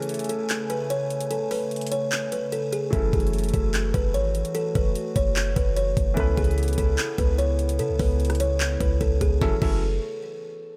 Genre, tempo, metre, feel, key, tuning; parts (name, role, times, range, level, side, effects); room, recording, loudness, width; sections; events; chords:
hip hop, trap; 148 BPM; 4/4; half-time; F# minor; A4 = 441 Hz
buzzing kalimba; melody; 0.0-9.8 s; G#4 to C#5; -30 LUFS; equal; digital delay
warm concert grand piano; accompaniment; 0.0-9.8 s; E3 to B4; -39 LUFS; equal
hollow soft pad; sustained chords; 0.0-9.6 s; C#3 to G#5; -36 LUFS; equal; chorus
trap drum kit; drums; 0.0-9.7 s; crash cymbal, handclaps, hi-hat, kick drum, rim click, snare drum; -29 LUFS; equal; overdrive
warm 808-style bass; bass; 2.9-10.0 s; F#1 to C#3; -27 LUFS; equal
little or no reverb; -24 LUFS; mono
0.0-9.4 A section; 9.4-10.8 B section
break 0.0-2.9
0.0 Amaj7; 2.9 F#m7; 6.2 C#m7; 9.4 F#m7